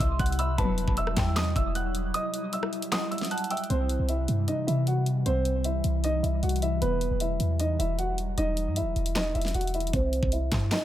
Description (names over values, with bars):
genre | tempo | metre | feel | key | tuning
hip hop, trap | 154 BPM | 4/4 | half-time | unclear | A4 = 439 Hz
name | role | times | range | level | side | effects
dark concert grand piano | melody | 0.0-10.8 s | B3 to F#6 | -30 LUFS | right 1 dB | low-pass filter, dub echo
soft synth bell | second line | 0.0-3.7 s | F#5 to C6 | -38 LUFS | equal | chorus, phaser, dub echo
glassy FM pad | sustained chords | 0.0-9.9 s | C3 to E4 | -34 LUFS | equal | ensemble chorus, built-in reverb
clean 808-style bass | bass | 0.0-10.7 s | E1 to C3 | -28 LUFS | equal | none
dubstep drum kit | drums | 0.0-10.8 s | handclaps, hi-hat, kick drum, rim click, snare drum | -31 LUFS | equal | none
dark chamber string section | stabs | 0.6-0.9 s | G2 to F#3 | -34 LUFS | left 6 dB | dub echo
room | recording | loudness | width
light reverb, digital ambience | echo-heavy mix | -25 LUFS | side -12 dB against mid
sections
0.0-3.7 A section; 3.7-9.9 B section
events
break 2.1-3.7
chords
0.0 C; 0.6 Emadd9; 3.7 C; 6.8 Emadd9; 9.9 C